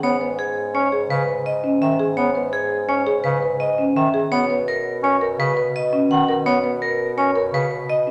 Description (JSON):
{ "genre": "classical, minimalist pattern music", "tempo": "168 BPM", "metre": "6/4", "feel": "straight", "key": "unclear", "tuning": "A4 = 440 Hz", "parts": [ { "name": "vibraphone with hard mallets", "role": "melody", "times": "0.0-8.1 s", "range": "G#4 to F#5", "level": "-24 LUFS", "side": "equal", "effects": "none" }, { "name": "clear bass clarinet", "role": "accompaniment", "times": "0.0-7.7 s", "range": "C#3 to C#4", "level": "-26 LUFS", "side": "equal", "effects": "none" }, { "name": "marimba with soft mallets", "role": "arpeggios", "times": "0.0-8.1 s", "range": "C#4 to B4", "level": "-26 LUFS", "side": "equal", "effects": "none" }, { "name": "mellow bassoon", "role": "bass", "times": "0.0-8.1 s", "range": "G#2 to B2", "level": "-29 LUFS", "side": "equal", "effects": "none" } ], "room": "wet large studio reverb, RT60 1.4 s", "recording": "none", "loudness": "-20 LUFS", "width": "mono", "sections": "0.0-8.1 A section", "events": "none", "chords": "0.0 E/G# (rootless); 4.3 Bmaj7(no3)" }